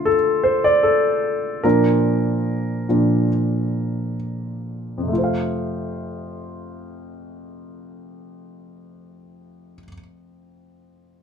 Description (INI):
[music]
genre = pop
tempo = 66-77 BPM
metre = 4/4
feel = straight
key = F major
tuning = A4 = 440 Hz
[part]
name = warm concert grand piano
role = accompaniment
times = 0.0-11.2 s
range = F2 to F5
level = -19 LUFS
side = equal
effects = none
[sound]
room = wet studio ambience, RT60 0.5 s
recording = band playing live in one room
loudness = -18 LUFS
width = side -7 dB against mid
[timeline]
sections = 0.0-5.1 A section; 5.1-8.7 B section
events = slowing down 0.0-5.1; grand piano solo 0.0-5.1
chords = 0.0 Dm; 1.6 Bb; 5.1 F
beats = 0.06 0.84 | 1.64 2.46 3.31 4.20 | 5.10 6.02 6.92 7.83